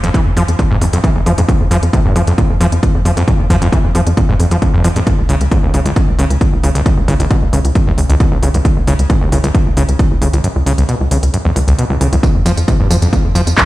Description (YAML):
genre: driving peak-time techno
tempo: 134 BPM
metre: 4/4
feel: straight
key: F harmonic minor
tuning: A4 = 440 Hz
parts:
  - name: overdriven acid bass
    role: riff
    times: 0.0-13.4 s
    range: F1 to F3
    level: -16 LUFS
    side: equal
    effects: distortion, sidechain pumping, dub echo
  - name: tight sequencer bass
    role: bass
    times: 0.0-13.5 s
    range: Db2 to F2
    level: -14 LUFS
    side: equal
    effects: sidechain pumping
  - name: techno drum kit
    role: drums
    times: 0.0-13.7 s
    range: handclaps, hi-hat, tambourine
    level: -22 LUFS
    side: equal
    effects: overdrive, sidechain pumping on hats, studio reverb, sidechain pumping on perc
  - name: electronic kick drum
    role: drums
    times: 0.1-13.7 s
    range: none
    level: -14 LUFS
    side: equal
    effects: overdrive, studio reverb
room: little or no reverb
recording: played on a big sound system in a bare room, stone room reverb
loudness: -10 LUFS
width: side -17 dB against mid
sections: 0.0-13.7 A section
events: filter sweep on acid bass 0.0-13.7; kick drops out 10.4-12.2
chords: none